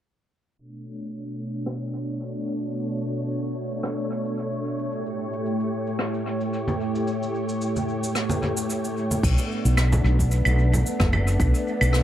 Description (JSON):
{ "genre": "sunset chillout", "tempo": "111 BPM", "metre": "4/4", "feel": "swing 54% on 16ths", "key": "B minor", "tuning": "A4 = 440 Hz", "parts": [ { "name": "soft string machine", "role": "sustained chords", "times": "0.6-12.0 s", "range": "A2 to C#5", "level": "-26 LUFS", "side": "equal", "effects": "ensemble chorus" }, { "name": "jazz brush drum kit", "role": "drums", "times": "0.6-12.0 s", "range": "cabasa, claves, crash cymbal, rim click", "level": "-29 LUFS", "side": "equal", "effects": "tape echo" }, { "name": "congas", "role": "percussion", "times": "6.7-11.2 s", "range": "none", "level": "-30 LUFS", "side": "right 1 dB", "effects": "tape echo" }, { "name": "woody fretless electric bass", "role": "bass", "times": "9.2-12.0 s", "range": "F#1 to B1", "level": "-20 LUFS", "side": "equal", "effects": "tube saturation" }, { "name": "electronic kick drum", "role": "drums", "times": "9.2-11.5 s", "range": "none", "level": "-24 LUFS", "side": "equal", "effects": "none" } ], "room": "light reverb, studio ambience", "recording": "echo-heavy mix, low-pass filter", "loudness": "-22 LUFS", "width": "side -11 dB against mid", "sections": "0.6-9.2 A section; 9.2-12.0 B section", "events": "filter sweep on string machine 0.6-9.2; filter sweep 0.6-9.2", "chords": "0.6 Bm9; 4.9 A7; 9.2 Bm7" }